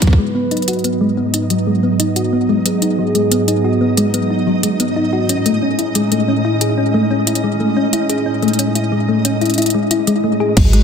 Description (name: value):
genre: IDM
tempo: 91 BPM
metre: 4/4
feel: straight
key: G# phrygian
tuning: A4 = 440 Hz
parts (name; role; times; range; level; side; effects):
- warm velvety synth lead; melody; 0.0-4.9 s; G#4 to B4; -24 LUFS; right 2 dB; chorus, analog delay
- hollow soft pad; sustained chords; 0.0-10.8 s; G#2 to B4; -19 LUFS; right 2 dB; chorus, sidechain pumping
- thumb-piano-like synth pluck; arpeggios; 0.0-10.8 s; F#3 to G#4; -17 LUFS; left 2 dB; chorus, cassette tape, tape echo
- electronic kick drum; drums; 0.0-0.2, 10.6-10.7 s; none; -12 LUFS; equal; overdrive
- industrial drum kit; drums; 0.0-10.8 s; crash cymbal, hi-hat, rim click; -21 LUFS; left 1 dB; none
- flickering grainy texture; texture; 0.9-10.8 s; D#4 to D#6; -24 LUFS; right 1 dB; built-in reverb, sidechain pumping
- woody FM bass; bass; 10.6-10.8 s; G#1; -11 LUFS; equal; none
room: moderate echo chamber reverb, RT60 2.1 s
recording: echo-heavy mix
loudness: -13 LUFS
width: side -7 dB against mid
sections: 0.0-10.6 A section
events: band accent 0.0; filter sweep on analog synth pad 0.0-10.6; filter sweep on synth arpeggio sound 0.0-10.6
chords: 0.0 G#m7; 5.3 Amaj7